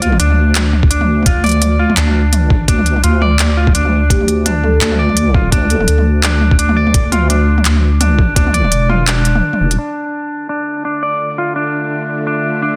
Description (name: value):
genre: half-time drum and bass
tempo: 169 BPM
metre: 4/4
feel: swing 58% on 16ths, half-time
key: D minor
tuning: A4 = 441 Hz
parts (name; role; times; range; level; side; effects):
- clean electric guitar; arpeggios; 0.0-12.8 s; D4 to D5; -20 LUFS; equal; low-pass filter, dub echo
- deep soft wobble bass; bass; 0.0-9.8 s; E1 to D2; -15 LUFS; equal; chorus
- industrial drum kit; drums; 0.0-9.8 s; handclaps, hi-hat, toms; -20 LUFS; equal; low-pass filter on toms, studio reverb, low-pass filter on snare, low-pass filter on hats
- electronic kick drum; drums; 0.8-8.4 s; none; -16 LUFS; equal; studio reverb
- vibraphone with soft mallets; melody; 4.1-6.0 s; G4 to A4; -24 LUFS; equal; tape echo
- bowed-like drone; sustained chords; 10.8-12.8 s; D3 to E5; -24 LUFS; equal; built-in reverb, sidechain pumping
room: light reverb, digital ambience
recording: dense, heavily limited modern master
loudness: -13 LUFS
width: mono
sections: 0.0-9.8 A section; 9.8-12.8 B section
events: drop 0.0-9.8; kick drops out 9.1-9.8; filter sweep on clean electric guitar 9.8-12.8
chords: 0.0 Dm; 9.8 Dmadd9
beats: 0.20 0.55 0.91 | 1.26 1.62 1.97 2.33 | 2.68 3.04 3.39 3.75 | 4.10 4.46 4.81 5.17 | 5.52 5.88 6.23 6.59 | 6.94 7.30 7.65 8.01 | 8.36 8.72 9.07 9.43 | 9.78 10.14 10.49 10.85 | 11.20 11.56 11.91 12.27 | 12.62